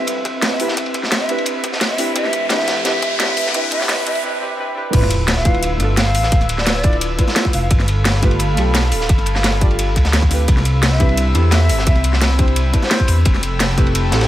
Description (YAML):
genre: liquid drum and bass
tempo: 173 BPM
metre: 4/4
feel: straight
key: D dorian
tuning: A4 = 440 Hz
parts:
  - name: mellow hollow silver concert flute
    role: melody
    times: 0.0-7.7, 10.9-13.2 s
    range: C5 to F5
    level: -24 LUFS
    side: equal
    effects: tape echo
  - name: deep mellow chord stab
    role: accompaniment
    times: 0.0-14.3 s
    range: A3 to D5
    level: -24 LUFS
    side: equal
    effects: chorus, tape echo
  - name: airy breathy pad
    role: sustained chords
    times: 0.0-14.3 s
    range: F3 to E6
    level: -26 LUFS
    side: equal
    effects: chorus
  - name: riser and sub drop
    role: sound effects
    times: 1.4-6.3 s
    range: none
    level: -25 LUFS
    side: equal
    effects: none
  - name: crunchy breakbeat drum kit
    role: drums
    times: 0.1-14.3 s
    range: ride cymbal, snare drum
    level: -24 LUFS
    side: equal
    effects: high-pass filter on cymbals, high-pass filter on snare, high-pass filter on room
  - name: drum and bass drum kit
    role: drums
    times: 0.1-14.2 s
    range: crash cymbal, hi-hat, snare drum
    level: -21 LUFS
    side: equal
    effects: overdrive
  - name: electronic kick drum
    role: drums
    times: 0.3-13.8 s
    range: none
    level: -16 LUFS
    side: equal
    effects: overdrive, high-pass filter on kick
  - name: dark detuned saw bass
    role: bass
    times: 4.9-14.3 s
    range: D1 to E2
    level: -17 LUFS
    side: equal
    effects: none
room: light reverb, studio reverb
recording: high-pass filter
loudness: -14 LUFS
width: side -13 dB against mid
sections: 0.0-4.9 A section; 4.9-14.3 B section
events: build-up 0.0-4.9; riser 1.4-4.2; break 4.2-4.9; drop 4.9-14.3; impact 4.9-6.3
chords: 0.0 Cmaj7; 2.2 Fmaj9#11; 4.9 Dm69; 7.7 G9; 10.5 Cmaj7; 13.3 Fmaj9#11